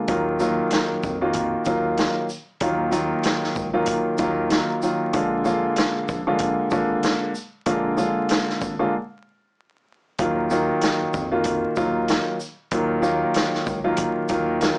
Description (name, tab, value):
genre	hip hop, boom-bap hip-hop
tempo	95 BPM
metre	4/4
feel	swing 59% on 16ths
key	Eb harmonic minor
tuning	A4 = 440 Hz
part	dark upright piano	accompaniment	0.0-14.8 s	D3 to Gb4	-21 LUFS	equal	cassette tape, high-pass filter, low-pass filter
part	round analog bass	bass	0.1-14.7 s	Ab1 to F2	-33 LUFS	equal	none
part	vintage drum kit	drums	0.1-14.8 s	hi-hat, kick drum, shaker, snare drum	-25 LUFS	equal	none
room	light reverb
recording	vinyl crackle, small speaker sound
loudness	-20 LUFS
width	side -33 dB against mid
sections	0.1-14.8 A section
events	break 8.9-10.2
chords	0.1 Ebmadd9; 5.1 Bb7; 10.2 Ebmadd9